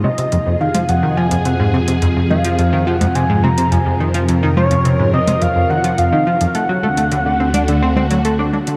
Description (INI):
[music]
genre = ambient, sequencer-driven space music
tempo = 106 BPM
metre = 4/4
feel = straight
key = unclear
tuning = A4 = 440 Hz
[part]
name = pulse-width lead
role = melody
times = 0.0-8.2 s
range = Db5 to Bb5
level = -22 LUFS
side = equal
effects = chorus, cassette tape, delay
[part]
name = phased string machine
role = sustained chords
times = 0.0-8.8 s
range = C3 to Eb5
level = -22 LUFS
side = equal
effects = ensemble chorus, phaser
[part]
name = plucky analog bass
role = riff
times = 0.0-8.8 s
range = F2 to D4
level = -20 LUFS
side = equal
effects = lush chorus, delay
[part]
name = analog drone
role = bass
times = 0.0-8.8 s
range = D2 to F2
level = -24 LUFS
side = equal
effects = chorus
[part]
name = electronic congas and hi-hat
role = percussion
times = 0.0-8.8 s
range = none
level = -26 LUFS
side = equal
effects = overdrive
[sound]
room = wet concert hall reverb, RT60 2.3 s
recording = cassette tape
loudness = -15 LUFS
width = mono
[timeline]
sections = 0.0-8.8 A section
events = none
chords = 0.0 Fm; 6.5 D7